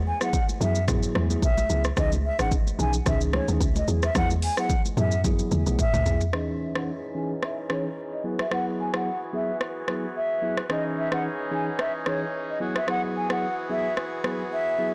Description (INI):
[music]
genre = afrobeats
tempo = 110 BPM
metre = 4/4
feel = swing 55% on 16ths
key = E major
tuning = A4 = 439 Hz
[part]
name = deep log drum bass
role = bass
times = 0.0-6.2 s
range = G#1 to F#2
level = -28 LUFS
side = equal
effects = none
[part]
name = mellow hollow silver concert flute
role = melody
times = 0.1-14.9 s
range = C#5 to G#5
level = -32 LUFS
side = equal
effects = low-pass filter, delay
[part]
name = mellow tine electric piano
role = accompaniment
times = 0.2-14.9 s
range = E3 to G#4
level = -33 LUFS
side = equal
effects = low-pass filter
[part]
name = afro-pop drum kit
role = drums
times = 0.2-14.4 s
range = hi-hat, kick drum, rim click, shaker, toms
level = -31 LUFS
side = equal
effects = soft clipping on snare
[part]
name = congas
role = percussion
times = 0.3-6.1 s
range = none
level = -37 LUFS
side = equal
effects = none
[part]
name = accordion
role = sustained chords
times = 6.3-14.9 s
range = E3 to G#4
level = -36 LUFS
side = equal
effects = low-pass filter
[sound]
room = light reverb, digital ambience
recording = blown-out, overdriven recording, overdrive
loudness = -26 LUFS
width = mono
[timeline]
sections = 0.0-6.3 A section; 6.3-14.9 B section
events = drum fill 5.2-6.3; filter sweep 6.3-14.9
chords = 0.0 Eadd9; 2.0 C#madd9; 3.9 Eadd9; 6.3 C#madd9; 8.2 Eadd9; 10.7 C#madd9; 12.6 Eadd9